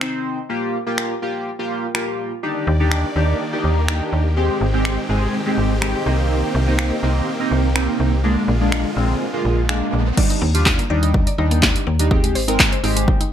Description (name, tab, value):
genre	dance-pop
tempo	124 BPM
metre	4/4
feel	straight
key	Eb major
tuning	A4 = 440 Hz
part	chorused polysynth	accompaniment	0.0-13.2 s	G3 to C5	-22 LUFS	right 1 dB	phaser, sidechain pumping
part	punchy analog drum machine	drums	0.0-13.3 s	crash cymbal, finger snaps, handclaps, hi-hat, kick drum, snare drum	-18 LUFS	equal	none
part	supersaw chords	sustained chords	2.4-10.2 s	D3 to D5	-26 LUFS	equal	sidechain pumping
part	slap-like FM bass	bass	2.7-13.2 s	Ab1 to Eb2	-19 LUFS	equal	sidechain pumping
part	riser	sound effects	9.2-10.2 s	none	-34 LUFS	left 1 dB	none
part	mallet-like synth pluck	arpeggios	10.2-13.3 s	Ab3 to D5	-26 LUFS	left 2 dB	chorus, sidechain pumping, digital delay
room	little or no reverb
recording	none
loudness	-17 LUFS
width	side -10 dB against mid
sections	0.0-10.2 A section; 10.2-13.3 B section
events	kick muted 9.2-10.2; riser 9.2-10.2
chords	0.5 Gm7; 2.4 Ebmaj7; 4.4 Abmaj7; 6.1 Cm7; 8.2 Bb7; 10.2 Ebmaj7; 12.1 Abmaj7